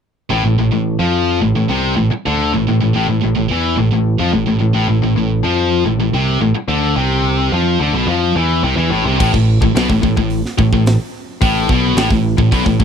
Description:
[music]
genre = heavy metal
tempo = 108 BPM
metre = 4/4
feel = straight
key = A minor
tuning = A4 = 440 Hz
[part]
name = scooped high-gain guitar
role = riff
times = 0.3-12.8 s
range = A2 to F3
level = -17 LUFS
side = right 8 dB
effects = distortion
[part]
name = tight distorted guitar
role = riff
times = 0.3-12.8 s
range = A2 to F3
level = -17 LUFS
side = left 11 dB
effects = distortion
[part]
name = picked electric bass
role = bass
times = 0.3-12.8 s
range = A1 to F2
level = -19 LUFS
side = equal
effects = none
[part]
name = tight metal drum kit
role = drums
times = 9.2-12.8 s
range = crash cymbal, hi-hat, kick drum, snare drum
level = -18 LUFS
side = right 1 dB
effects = none
[sound]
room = small room ambience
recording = dry, close 1970s-style studio recording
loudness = -13 LUFS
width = side -7 dB against mid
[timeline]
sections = 0.3-9.2 A section; 9.2-12.8 B section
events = none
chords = 0.3 Am; 9.2 N.C.

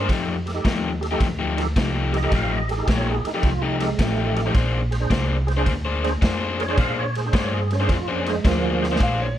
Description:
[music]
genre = electric blues shuffle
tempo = 108 BPM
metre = 4/4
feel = swing 67% on 8ths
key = unclear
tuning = A4 = 442 Hz
[part]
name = tonewheel organ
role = accompaniment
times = 0.0-9.0 s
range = F3 to F5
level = -26 LUFS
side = right 4 dB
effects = slow rotary speaker, overdrive, chorus vibrato
[part]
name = crunchy overdriven guitar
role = riff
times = 0.0-9.3 s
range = F3 to C5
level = -26 LUFS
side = left 5 dB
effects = none
[part]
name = upright bass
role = bass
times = 0.0-9.4 s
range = A1 to Bb2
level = -25 LUFS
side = equal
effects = none
[part]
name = raw garage drum kit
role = drums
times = 0.1-9.2 s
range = kick drum, ride cymbal, snare drum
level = -25 LUFS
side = equal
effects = none
[part]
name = electric slide guitar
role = melody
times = 9.0-9.4 s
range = Db5 to F5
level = -26 LUFS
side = equal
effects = none
[sound]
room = light reverb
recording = none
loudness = -19 LUFS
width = side -11 dB against mid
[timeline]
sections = 0.0-9.0 A section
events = drum fill 8.7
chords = 0.1 F9; 4.6 Bb9

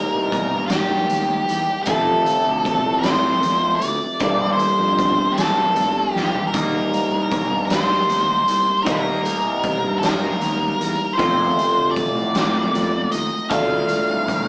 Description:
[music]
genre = psychedelic rock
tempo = 52 BPM (dotted quarters)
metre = 6/8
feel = straight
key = unclear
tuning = A4 = 439 Hz
[part]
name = octave-fuzz lead guitar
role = melody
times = 0.0-14.5 s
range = G4 to F5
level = -23 LUFS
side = equal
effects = distortion
[part]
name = electric guitar through a small old amp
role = riff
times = 0.0-14.5 s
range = F2 to F4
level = -26 LUFS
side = equal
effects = phaser
[part]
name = fuzz fingered electric bass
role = bass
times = 0.1-14.4 s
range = C2 to C3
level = -31 LUFS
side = equal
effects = overdrive
[part]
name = raw garage drum kit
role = drums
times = 0.3-14.5 s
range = hi-hat, kick drum, snare drum, toms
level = -28 LUFS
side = equal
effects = none
[part]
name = congas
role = percussion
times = 0.3-14.5 s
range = none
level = -37 LUFS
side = equal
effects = none
[sound]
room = moderate studio ambience, RT60 0.5 s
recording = band playing live in one room, small speaker sound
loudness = -20 LUFS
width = mono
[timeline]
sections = 0.0-14.5 A section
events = drum fill 5.9-6.5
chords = 0.0 Eb; 1.9 F; 4.2 Gm; 6.5 Eb; 11.2 F; 13.5 Dm

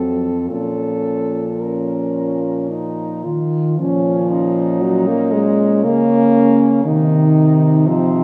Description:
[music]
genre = classical, lyrical piece for horn quartet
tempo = 54-61 BPM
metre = 3/4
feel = rubato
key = Bb minor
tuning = A4 = 439 Hz
[part]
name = clear French horn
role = melody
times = 0.0-8.2 s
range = C4 to Bb4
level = -25 LUFS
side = equal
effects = none
[part]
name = mellow French horn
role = second line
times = 0.0-8.2 s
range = C4 to F4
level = -25 LUFS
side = equal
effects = none
[part]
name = dark French horn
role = accompaniment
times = 0.0-8.2 s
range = Eb3 to Bb3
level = -18 LUFS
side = equal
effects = none
[part]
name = mellow French horn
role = bass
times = 0.0-8.2 s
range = F2 to Db3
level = -25 LUFS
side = equal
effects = none
[sound]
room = moderate concert hall reverb, RT60 1.8 s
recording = none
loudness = -16 LUFS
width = mono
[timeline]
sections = 0.0-3.8 A section; 3.8-8.2 A section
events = none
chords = 0.5 Bbm; 6.8 F5/C

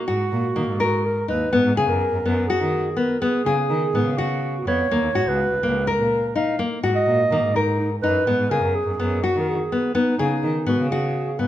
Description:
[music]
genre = contemporary instrumental, chamber music in an uneven meter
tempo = 249 BPM (eighths)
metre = 7/8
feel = straight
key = unclear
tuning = A4 = 440 Hz
[part]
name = dark clarinet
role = melody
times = 0.0-11.5 s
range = Eb4 to F5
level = -24 LUFS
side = right 3 dB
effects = none
[part]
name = nylon-string guitar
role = arpeggios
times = 0.0-11.5 s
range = Bb3 to Bb4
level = -22 LUFS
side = left 3 dB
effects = none
[part]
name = rich cello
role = bass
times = 0.1-11.5 s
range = Db2 to Eb3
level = -25 LUFS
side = right 1 dB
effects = none
[sound]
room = light reverb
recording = none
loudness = -19 LUFS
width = side -12 dB against mid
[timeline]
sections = 0.0-11.5 A section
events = none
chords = 0.0 Ebm; 1.5 Abm7; 4.9 Ebm7; 8.3 Abm7

